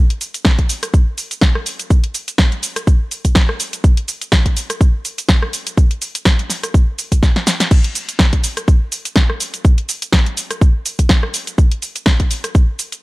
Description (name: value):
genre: house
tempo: 124 BPM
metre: 4/4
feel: swing 55% on 16ths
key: none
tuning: none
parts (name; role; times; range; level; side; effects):
- house drum kit; drums; 0.1-13.0 s; crash cymbal, hi-hat, rim click, shaker, snare drum; -18 LUFS; equal; none
- electronic kick drum; drums; 0.5-12.7 s; none; -12 LUFS; equal; none
room: digital ambience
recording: none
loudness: -13 LUFS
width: side -21 dB against mid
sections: 0.0-13.0 A section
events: drum fill 7.2-7.7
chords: none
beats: 0.45 0.94 1.42 | 1.90 2.39 2.87 3.36 | 3.84 4.32 4.81 5.29 | 5.78 6.26 6.74 7.23 | 7.71 8.19 8.68 9.16 | 9.65 10.13 10.61 11.10 | 11.58 12.06 12.55